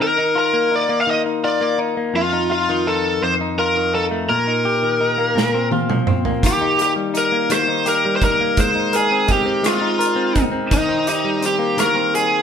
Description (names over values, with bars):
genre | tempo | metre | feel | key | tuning
six-eight pop ballad | 56 BPM (dotted quarters) | 6/8 | straight | Eb major | A4 = 443 Hz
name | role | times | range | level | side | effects
bluesy overdriven lead guitar | melody | 0.0-12.4 s | Eb4 to F5 | -18 LUFS | equal | distortion
direct-recorded clean electric guitar | accompaniment | 0.0-12.4 s | F2 to Bb4 | -20 LUFS | left 3 dB | none
loose indie drum kit | drums | 5.4-12.3 s | hi-hat, kick drum, rim click, snare drum, toms | -22 LUFS | right 2 dB | none
room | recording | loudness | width
moderate stone room reverb, RT60 1.1 s | band playing live in one room | -16 LUFS | side -7 dB against mid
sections
0.0-12.4 A section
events
drum fill 5.4-6.4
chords
0.0 Ebsus2; 2.2 F7; 4.3 Eb/Bb; 5.4 Bbsus2; 6.4 Eb; 8.6 Abadd9; 10.7 Eb6